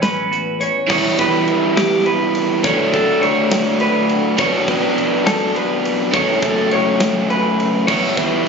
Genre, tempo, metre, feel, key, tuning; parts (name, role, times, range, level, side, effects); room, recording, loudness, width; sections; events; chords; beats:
math rock and midwest emo; 69 BPM (dotted quarters); 6/8; straight; A4 = 439 Hz
clean electric guitar; accompaniment; 0.0-2.6 s; E2 to F#4; -26 LUFS; right 7 dB; phaser
electric guitar through a small old amp; arpeggios; 0.0-8.5 s; G4 to C#5; -19 LUFS; left 2 dB
picked electric bass; bass; 0.0-8.4 s; E1 to B2; -27 LUFS; left 1 dB
modern studio drum kit; drums; 0.0-8.5 s; crash cymbal, hi-hat, kick drum, ride cymbal, snare drum; -23 LUFS; right 1 dB
overdriven electric guitar; riff; 0.9-8.5 s; F#2 to E4; -17 LUFS; right 2 dB
light reverb; recorded on a phone in the room, club reverb, nothing above 7.6 kHz; -14 LUFS; side -5 dB against mid
0.9-8.5 A section
0.0 A13; 0.9 Em; 2.6 Dmaj7; 4.4 Bm9; 6.1 F#m; 7.9 Em
0.03 | 0.91 1.78 | 2.65 3.52 | 4.39 5.27 | 6.14 7.01 | 7.88